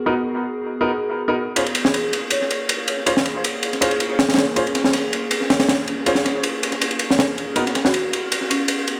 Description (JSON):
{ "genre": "drum and bass, jungle", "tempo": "160 BPM", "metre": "4/4", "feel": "straight", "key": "Bb phrygian", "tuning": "A4 = 442 Hz", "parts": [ { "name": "warbly tape-like pad", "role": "sustained chords", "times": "0.0-9.0 s", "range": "Bb3 to Bb4", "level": "-29 LUFS", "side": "equal", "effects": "chorus, built-in reverb, phaser" }, { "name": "warm baby grand piano", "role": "stabs", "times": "0.1-7.6 s", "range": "Cb4 to C5", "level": "-26 LUFS", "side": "equal", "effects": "low-pass filter, dub echo" }, { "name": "crunchy breakbeat drum kit", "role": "drums", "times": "1.6-9.0 s", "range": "ride cymbal, snare drum", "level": "-22 LUFS", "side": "equal", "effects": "tape echo" }, { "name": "marimba with medium mallets", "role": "melody", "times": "1.8-2.8, 7.8-8.9 s", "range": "Db4 to Db5", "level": "-28 LUFS", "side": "equal", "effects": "tape echo" } ], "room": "moderate echo chamber reverb, RT60 1.5 s, studio reverb", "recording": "echo-heavy mix", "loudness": "-20 LUFS", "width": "mono", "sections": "0.0-9.0 A section", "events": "none", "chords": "0.0 Abm9; 1.6 Bbm7; 7.6 Abm9" }